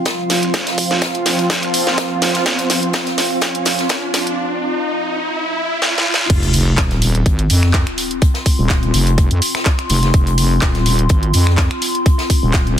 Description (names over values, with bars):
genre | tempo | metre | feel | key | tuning
bass house | 125 BPM | 4/4 | swing 54% on 16ths | unclear | A4 = 440 Hz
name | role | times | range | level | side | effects
sweeping resonant pad | sustained chords | 0.0-6.3 s | F3 to F4 | -22 LUFS | right 1 dB | chorus, sidechain pumping
riser and sub drop | sound effects | 0.9-8.2 s | none | -24 LUFS | equal | none
warbly tape-like pad | texture | 0.0-12.8 s | C4 to C6 | -23 LUFS | left 1 dB | chorus, built-in reverb, sidechain pumping
electronic kick drum | drums | 0.1-12.6 s | none | -15 LUFS | equal | high-pass filter on kick
garage drum kit | drums | 0.1-12.8 s | crash cymbal, finger snaps, handclaps, hi-hat, snare drum | -19 LUFS | equal | high-pass filter on hats, soft clipping on snare, high-pass filter on snare, high-pass filter on cymbals
open jazz drum kit | drums | 0.1-12.7 s | hi-hat, snare drum | -27 LUFS | left 3 dB | sidechain pumping on hats, high-pass filter on hats, soft clipping on snare, high-pass filter on snare, high-pass filter on room
wobble bass | bass | 6.3-12.8 s | Eb1 to F2 | -15 LUFS | equal | chorus, sidechain pumping
room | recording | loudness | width
light reverb | dense, heavily limited modern master, high-pass filter | -14 LUFS | side -10 dB against mid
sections
0.0-6.3 A section; 6.3-12.8 B section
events
build-up 0.0-6.3; drum fill 0.0-4.4, 5.8-6.3; riser 0.9-6.3; drop 6.3-12.8; impact 6.3-8.2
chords
0.0 F5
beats
0.06 | 0.54 1.02 1.50 1.98 | 2.46 2.94 3.42 3.90 | 4.38 4.86 5.34 5.82 | 6.30 6.78 7.26 7.74 | 8.22 8.70 9.18 9.66 | 10.14 10.62 11.10 11.58 | 12.06 12.54